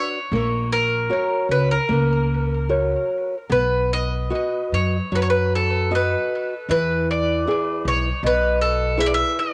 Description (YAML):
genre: fado-style ballad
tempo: 73-80 BPM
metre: 4/4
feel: rubato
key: unclear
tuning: A4 = 440 Hz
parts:
  - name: bowl-back mandolin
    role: melody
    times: 0.0-9.5 s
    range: A4 to E5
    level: -24 LUFS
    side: equal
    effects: cassette tape, tape echo
  - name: nylon-string guitar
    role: accompaniment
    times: 0.0-9.5 s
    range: B2 to D#5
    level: -26 LUFS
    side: equal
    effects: cassette tape
  - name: upright bass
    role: bass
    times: 0.3-9.2 s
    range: A#1 to F#2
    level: -26 LUFS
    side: equal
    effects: transformer saturation
room: light reverb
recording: home recording on cassette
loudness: -21 LUFS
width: mono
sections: 0.0-9.5 A section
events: none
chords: 0.3 F#/A#; 3.5 B; 6.7 E